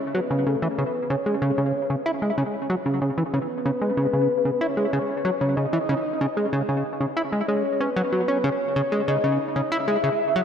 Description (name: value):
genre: ambient, sequencer-driven space music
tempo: 94 BPM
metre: 4/4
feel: straight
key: C# minor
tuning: A4 = 440 Hz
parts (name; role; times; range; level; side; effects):
- soft octave-layered synth lead; melody; 0.0-10.4 s; A4 to E5; -26 LUFS; left 1 dB; chorus, phaser, analog delay
- plucky analog bass; riff; 0.1-10.4 s; C#3 to E4; -23 LUFS; equal; analog delay
room: wet lush hall reverb, RT60 2.6 s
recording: none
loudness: -21 LUFS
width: side -7 dB against mid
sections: 0.0-10.4 A section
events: none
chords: 0.0 C#m